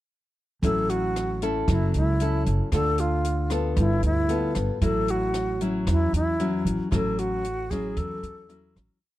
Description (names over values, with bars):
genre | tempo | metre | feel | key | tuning
bossa nova | 114 BPM | 4/4 | straight | A major | A4 = 441 Hz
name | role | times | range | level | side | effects
bright alto flute | melody | 0.6-8.8 s | E4 to A4 | -27 LUFS | equal | none
nylon-string guitar | accompaniment | 0.6-9.0 s | A2 to A4 | -28 LUFS | left 3 dB | none
upright bass | bass | 0.6-8.9 s | F#1 to E2 | -26 LUFS | right 1 dB | none
compact cocktail drum kit | drums | 0.6-8.9 s | hi-hat, kick drum, rim click | -30 LUFS | right 1 dB | none
room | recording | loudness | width
little or no reverb | dark, warm production | -22 LUFS | side -15 dB against mid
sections
0.6-9.0 A section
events
fade-out 6.9-9.0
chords
0.6 A6; 1.7 F#m7; 2.7 Dm7; 3.8 G9; 4.8 A6